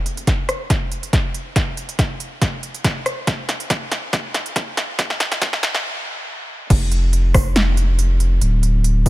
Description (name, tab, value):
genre	future bass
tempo	140 BPM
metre	4/4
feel	swing 54% on 16ths, half-time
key	unclear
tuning	A4 = 440 Hz
part	big-room dance drum kit	drums	0.1-9.1 s	crash cymbal, hi-hat, rim click, snare drum	-22 LUFS	equal	overdrive, high-pass filter on hats, high-pass filter on snare, high-pass filter on toms, high-pass filter on cymbals, high-pass filter on room
part	electronic kick drum	drums	0.3-9.1 s	none	-19 LUFS	equal	overdrive
part	saturated sub bass	bass	6.7-9.1 s	D1 to F1	-16 LUFS	equal	sidechain pumping
room	little or no reverb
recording	high-pass filter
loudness	-17 LUFS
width	side -18 dB against mid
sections	0.0-6.7 A section; 6.7-9.1 B section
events	build-up 0.0-6.7; drum fill 0.0-5.8; filter sweep 0.0-6.7; stop 5.8-6.7; drop 6.7-9.1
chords	none